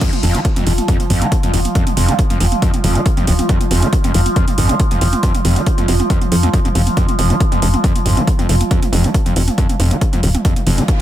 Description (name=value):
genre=driving peak-time techno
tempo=138 BPM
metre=4/4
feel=straight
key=unclear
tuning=A4 = 441 Hz
part: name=screaming distorted acid line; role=riff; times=0.0-10.8 s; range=F2 to F3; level=-20 LUFS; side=equal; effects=distortion, analog chorus, sidechain pumping, analog delay
part: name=overtone-sweeping drone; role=drone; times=0.0-11.0 s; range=F3 to F4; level=-22 LUFS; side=right 1 dB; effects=chorus, built-in reverb, phaser, sidechain pumping
part: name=electronic kick drum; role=drums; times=0.0-11.0 s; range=none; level=-16 LUFS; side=equal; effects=small room reverb
part: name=techno drum kit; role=drums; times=0.0-11.0 s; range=crash cymbal, hi-hat, toms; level=-22 LUFS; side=right 2 dB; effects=small room reverb
part: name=tight sequencer bass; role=bass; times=0.2-10.8 s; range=Eb1 to F2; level=-15 LUFS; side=equal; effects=sidechain pumping
part: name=riser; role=sound effects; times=10.6-11.0 s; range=none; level=-31 LUFS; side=left 1 dB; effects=none
room=light reverb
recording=echo-heavy mix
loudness=-12 LUFS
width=side -12 dB against mid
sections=0.0-11.0 A section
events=none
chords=none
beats=| 0.01 0.45 0.88 1.32 | 1.75 2.19 2.62 3.06 | 3.49 3.93 4.36 4.80 | 5.23 5.67 6.10 6.54 | 6.97 7.41 7.84 8.27 | 8.71 9.14 9.58 10.01 | 10.45 10.88